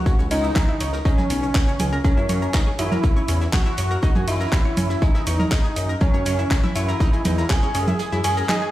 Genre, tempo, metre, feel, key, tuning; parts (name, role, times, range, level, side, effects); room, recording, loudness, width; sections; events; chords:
melodic techno; 121 BPM; 4/4; straight; A4 = 443 Hz
wide unison lead; melody; 0.0-8.7 s; C#4 to G#4; -26 LUFS; equal; sidechain pumping, tape echo
dark detuned synth bell; second line; 0.0-8.7 s; C#5 to G#5; -31 LUFS; equal; chorus, sidechain pumping, digital delay
analog pluck; arpeggios; 0.1-8.7 s; B3 to C#5; -29 LUFS; equal; chorus, cassette tape, sidechain pumping, digital delay
electronic kick drum; drums; 0.1-7.6 s; -19 LUFS; equal
house drum kit; drums; 0.1-8.6 s; congas, handclaps, hi-hat, shaker; -26 LUFS; right 1 dB
warm soul drum kit; drums; 0.1-8.6 s; hi-hat, snare drum; -38 LUFS; right 1 dB
dark detuned saw bass; bass; 0.2-8.4 s; B1 to F#2; -23 LUFS; equal; sidechain pumping
light reverb, digital ambience; played on a big sound system in a bare room, stone room reverb; -18 LUFS; side -14 dB against mid
0.0-8.7 A section
kick drops out 8.0-8.7
0.0 C#m; 2.0 F#